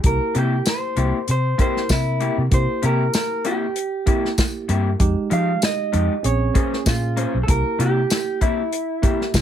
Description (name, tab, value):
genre	straight-eighth soul blues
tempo	97 BPM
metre	4/4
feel	swing 55% on 16ths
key	unclear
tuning	A4 = 437 Hz
part	tine electric piano	accompaniment	0.0-9.4 s	Ab3 to Bb4	-28 LUFS	right 6 dB	none
part	vintage muted fingered electric bass	bass	0.0-9.4 s	Bb1 to F3	-21 LUFS	equal	none
part	warm soul drum kit	drums	0.0-9.4 s	hi-hat, kick drum, snare drum, tambourine	-20 LUFS	equal	none
part	electric guitar through a small old amp	melody	0.1-9.3 s	E4 to F5	-24 LUFS	right 1 dB	none
part	electric guitar through a small old amp	stabs	0.3-9.2 s	C3 to C5	-26 LUFS	left 6 dB	none
room	light reverb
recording	none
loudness	-18 LUFS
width	side -10 dB against mid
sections	0.0-9.4 A section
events	none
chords	0.0 C7; 5.0 Fm9; 6.2 Bbm9; 7.5 C7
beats	| 0.04 0.66 1.28 1.90 | 2.52 3.15 3.77 4.39 | 5.01 5.63 6.25 6.87 | 7.48 8.10 8.72 9.34